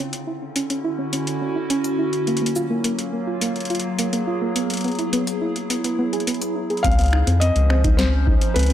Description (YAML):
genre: IDM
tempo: 105 BPM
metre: 4/4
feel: straight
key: Db major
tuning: A4 = 440 Hz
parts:
  - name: warbly tape-like pad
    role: sustained chords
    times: 0.0-8.7 s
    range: D3 to C5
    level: -26 LUFS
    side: equal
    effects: chorus, built-in reverb, phaser
  - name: soft round pluck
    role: arpeggios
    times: 0.0-8.7 s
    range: Bb3 to G#4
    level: -25 LUFS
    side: right 1 dB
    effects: chorus, tape echo
  - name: booming analog drum machine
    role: drums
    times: 0.1-8.7 s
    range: cabasa, finger snaps, hi-hat, snare drum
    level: -27 LUFS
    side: left 1 dB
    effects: none
  - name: felt-muted upright piano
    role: melody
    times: 6.8-8.7 s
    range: Cb5 to F5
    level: -24 LUFS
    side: left 2 dB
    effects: analog delay
  - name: round analog bass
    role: bass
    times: 6.8-8.7 s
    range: Db2 to F2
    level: -18 LUFS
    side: equal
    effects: tube saturation
  - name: electronic kick drum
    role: drums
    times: 6.8-8.4 s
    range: none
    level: -20 LUFS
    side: equal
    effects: none
room: light reverb, digital ambience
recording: dry, gritty hardware recording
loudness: -19 LUFS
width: side -11 dB against mid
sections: 0.0-6.8 A section; 6.8-8.7 B section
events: none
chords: 0.0 Dmaj9; 2.3 Gbmaj9; 4.6 Eadd9; 6.8 Dbmaj9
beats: 0.56 1.13 1.70 | 2.27 2.84 3.42 3.99 | 4.56 5.13 5.70 6.27 | 6.84 7.42 7.99 8.56